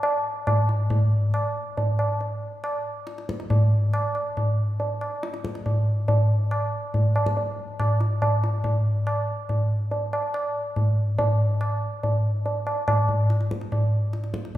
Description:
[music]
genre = indian classical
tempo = 140 BPM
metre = 3/4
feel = straight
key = none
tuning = none
[part]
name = tabla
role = percussion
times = 0.0-14.6 s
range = none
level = -22 LUFS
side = equal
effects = none
[sound]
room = wet recital hall reverb, RT60 1.8 s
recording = recorded in a church or concert hall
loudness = -22 LUFS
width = side -14 dB against mid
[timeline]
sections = 0.0-8.7 A section; 8.7-14.6 B section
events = speeding up 0.0-14.6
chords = none

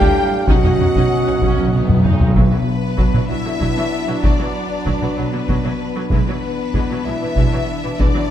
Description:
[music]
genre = cinematic, epic orchestral film score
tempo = 64 BPM (dotted quarters)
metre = 6/8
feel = straight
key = B minor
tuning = A4 = 441 Hz
[part]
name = rich symphonic violin section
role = melody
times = 0.0-8.3 s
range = B4 to G5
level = -27 LUFS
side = left 6 dB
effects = none
[part]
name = mellow concert flute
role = second line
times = 0.0-2.0 s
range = F#5 to G5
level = -28 LUFS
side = equal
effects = none
[part]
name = rich symphonic violin section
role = second line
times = 0.0-8.3 s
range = B3 to G5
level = -30 LUFS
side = left 3 dB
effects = none
[part]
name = rich symphonic viola section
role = accompaniment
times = 0.0-8.2 s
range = D3 to F4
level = -27 LUFS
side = right 1 dB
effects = none
[part]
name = mellow French horn section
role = sustained chords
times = 0.0-8.3 s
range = B3 to G4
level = -23 LUFS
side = left 2 dB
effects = none
[part]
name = warm trombone section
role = sustained chords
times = 0.0-8.3 s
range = A2 to D4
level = -27 LUFS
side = right 5 dB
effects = none
[part]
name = warm trumpet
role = stabs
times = 0.0-2.0 s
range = D#5 to F5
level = -28 LUFS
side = right 1 dB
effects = none
[part]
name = rich studio double bass section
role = bass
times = 0.0-8.1 s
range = B1 to D2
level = -24 LUFS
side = right 4 dB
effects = none
[part]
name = warm symphonic cello section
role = bass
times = 0.0-8.2 s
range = B2 to G3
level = -29 LUFS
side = right 3 dB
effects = none
[part]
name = taiko ensemble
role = drums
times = 0.0-8.3 s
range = none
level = -19 LUFS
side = equal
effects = none
[part]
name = timpani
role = percussion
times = 0.5-2.3 s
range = B2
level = -19 LUFS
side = equal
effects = none
[sound]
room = moderate scoring stage reverb, RT60 1.8 s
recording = none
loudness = -15 LUFS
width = side -10 dB against mid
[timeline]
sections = 0.0-2.4 A section; 2.4-8.3 B section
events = timpani fill 0.5-2.4; drum fill 1.9-2.4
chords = 0.5 Badd9; 2.4 Bm; 6.1 E7(no3)/B

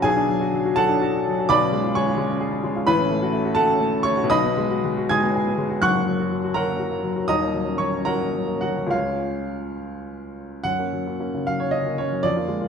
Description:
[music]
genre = classical, romantic character piece for solo piano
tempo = 67-88 BPM (dotted quarters)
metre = 6/8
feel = rubato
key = F# minor, F# major from 4.3 s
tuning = A4 = 441 Hz
[part]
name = clear upright piano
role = solo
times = 0.0-12.7 s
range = D#1 to G#6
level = -20 LUFS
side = equal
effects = none
[sound]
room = wet recital hall reverb, RT60 1.7 s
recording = dark, warm production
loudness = -20 LUFS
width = side -6 dB against mid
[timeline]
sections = 0.0-10.7 A section; 10.7-12.7 B section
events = none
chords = 0.0 Bm7; 1.5 C#7/B; 2.9 F#m/A; 4.3 B6; 5.8 F#; 7.3 D#m7; 8.9 C#; 10.7 F#

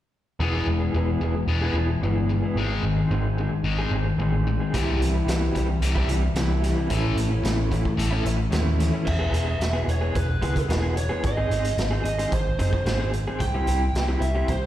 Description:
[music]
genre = quiet-loud alternative rock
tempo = 111 BPM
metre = 4/4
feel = straight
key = E major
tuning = A4 = 440 Hz
[part]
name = electric guitar through a small old amp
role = arpeggios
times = 0.4-14.5 s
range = E2 to G#4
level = -28 LUFS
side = right 1 dB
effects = tremolo, slapback echo
[part]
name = sludgy distorted guitar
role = riff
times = 0.4-9.0 s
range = G#2 to B3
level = -28 LUFS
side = left 6 dB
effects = overdrive, slapback echo
[part]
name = overdriven picked electric bass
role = bass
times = 0.4-14.7 s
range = E1 to D#2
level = -24 LUFS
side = equal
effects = none
[part]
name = raw garage drum kit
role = drums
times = 4.7-14.6 s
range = crash cymbal, hi-hat, kick drum, snare drum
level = -29 LUFS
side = equal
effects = none
[part]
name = lead guitar through a small cranked amp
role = melody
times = 9.1-14.7 s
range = B4 to G5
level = -30 LUFS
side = right 1 dB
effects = overdrive, slapback echo
[sound]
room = light reverb, studio reverb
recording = live gig heard through the venue's PA, recital hall reverb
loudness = -21 LUFS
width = side -13 dB against mid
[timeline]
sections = 0.4-9.1 A section; 9.1-14.7 B section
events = none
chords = 0.4 E; 2.6 G#; 4.7 C; 6.9 A; 9.1 E; 11.2 G#; 13.4 C

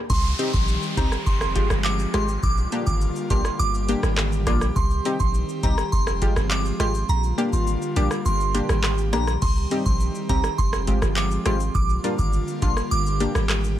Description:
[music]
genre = dancehall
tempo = 103 BPM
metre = 4/4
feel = straight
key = C minor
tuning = A4 = 445 Hz
[part]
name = glassy synth bell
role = melody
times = 0.1-13.3 s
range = Bb5 to D6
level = -29 LUFS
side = right 2 dB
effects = chorus, phaser, digital delay
[part]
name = airy breathy pad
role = sustained chords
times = 0.1-13.8 s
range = D3 to G4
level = -30 LUFS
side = equal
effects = chorus, sidechain pumping
[part]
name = punchy sub bass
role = bass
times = 0.1-13.8 s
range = F1 to C2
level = -24 LUFS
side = equal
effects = none
[part]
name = booming analog drum machine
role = drums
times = 0.1-13.8 s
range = crash cymbal, handclaps, hi-hat, kick drum, rim click, shaker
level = -24 LUFS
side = equal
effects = vintage 12-bit sampler grit
[part]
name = downlifter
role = sound effects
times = 0.1-4.8 s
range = none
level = -34 LUFS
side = equal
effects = none
[part]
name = punchy chord stab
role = accompaniment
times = 0.4-13.3 s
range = G3 to G4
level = -27 LUFS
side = left 2 dB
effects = chorus
[sound]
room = little or no reverb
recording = none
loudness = -20 LUFS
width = side -12 dB against mid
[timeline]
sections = 0.1-9.4 A section; 9.4-13.8 B section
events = kick muted 7.1-9.4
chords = 0.1 Cm; 1.3 Fmadd9; 2.4 Bb6; 3.6 Gm; 4.8 Cm; 5.9 Fmadd9; 7.1 Bb6; 8.3 Gm; 9.4 Cm; 10.6 Fmadd9; 11.8 Bb6; 12.9 Gm

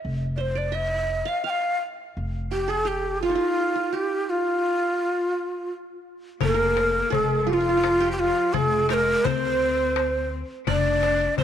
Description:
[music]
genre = Arabic maqam ensemble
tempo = 85 BPM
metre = 3/4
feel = straight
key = F maqam rast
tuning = A4 = 440 Hz
[part]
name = qanun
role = second line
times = 0.0-11.4 s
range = E4-50c to F5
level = -30 LUFS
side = right 8 dB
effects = none
[part]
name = upright bass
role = bass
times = 0.0-11.4 s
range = F1 to D2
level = -29 LUFS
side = equal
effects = none
[part]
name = breathy ney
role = melody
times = 0.4-11.4 s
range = F4 to G5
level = -23 LUFS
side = equal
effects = none
[part]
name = rich cello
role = second line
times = 6.4-11.4 s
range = F3 to D4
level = -31 LUFS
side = left 12 dB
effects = none
[part]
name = darbuka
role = percussion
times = 6.4-11.4 s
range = none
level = -28 LUFS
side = left 11 dB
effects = none
[sound]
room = moderate plate reverb, RT60 2.8 s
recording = 1960s-style stereo with parts hard left and right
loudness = -21 LUFS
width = side -9 dB against mid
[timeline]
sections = 0.0-6.4 A section; 6.4-11.4 B section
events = none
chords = none

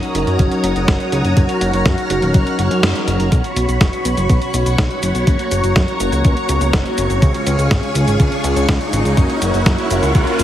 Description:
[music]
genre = italo disco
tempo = 123 BPM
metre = 4/4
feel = straight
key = F# major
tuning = A4 = 440 Hz
[part]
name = string machine, full ensemble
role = sustained chords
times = 0.0-10.4 s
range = F#4 to E#6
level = -20 LUFS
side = left 1 dB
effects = ensemble chorus
[part]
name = mellow synth brass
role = stabs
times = 0.0-10.4 s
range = B2 to B4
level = -22 LUFS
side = right 1 dB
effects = chorus, tape echo
[part]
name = dusty soul sampler-style drum kit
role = drums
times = 0.0-10.4 s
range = cabasa, hi-hat, snare drum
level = -22 LUFS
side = equal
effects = none
[part]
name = fat analog bass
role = bass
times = 0.1-10.4 s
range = D#1 to F#2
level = -19 LUFS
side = equal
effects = none
[part]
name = electronic kick drum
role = drums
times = 0.4-10.2 s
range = none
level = -15 LUFS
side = equal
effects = none
[part]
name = riser and reverse cymbal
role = sound effects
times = 4.9-10.4 s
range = none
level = -26 LUFS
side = equal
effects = none
[sound]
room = light reverb, digital ambience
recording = heavily compressed radio sound, multiband compression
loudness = -13 LUFS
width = side -12 dB against mid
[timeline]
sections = 0.0-3.3 A section; 3.3-10.4 B section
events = kick drops out 2.8-3.3; band accent 2.8; filter sweep on analog polysynth 3.3-10.4; riser 4.9-10.4; reverse cymbal 10.1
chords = 0.0 F#6; 3.3 Bsus2; 5.3 F#; 7.2 C#; 9.2 F#

